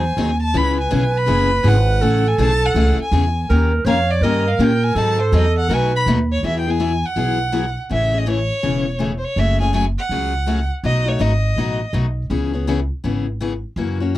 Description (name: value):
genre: acoustic string swing (jazz manouche)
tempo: 163 BPM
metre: 4/4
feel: swing 62% on 8ths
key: C# minor, E major from 6.4 s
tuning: A4 = 440 Hz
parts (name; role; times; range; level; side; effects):
- rich violin; melody; 0.0-11.9 s; C5 to B5; -22 LUFS; equal; none
- mellow clarinet; second line; 0.0-6.2 s; A4 to C#5; -22 LUFS; right 4 dB; none
- picked steel-string acoustic guitar; accompaniment; 0.0-14.2 s; B2 to A#4; -22 LUFS; left 5 dB; none
- upright bass; bass; 0.0-14.2 s; E1 to A#2; -19 LUFS; right 1 dB; none
room: little or no reverb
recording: dry, close 1970s-style studio recording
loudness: -16 LUFS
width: side -14 dB against mid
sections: 0.0-6.4 A section; 6.4-14.2 B section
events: violin solo 0.0-6.4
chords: 0.0 G#7; 0.6 C#m7; 2.0 Amaj7; 3.5 D#7; 5.0 G#7b9b13; 5.7 B7; 6.4 Eadd9; 7.9 Amaj7; 9.4 F#madd9; 10.8 B7; 12.3 C#m7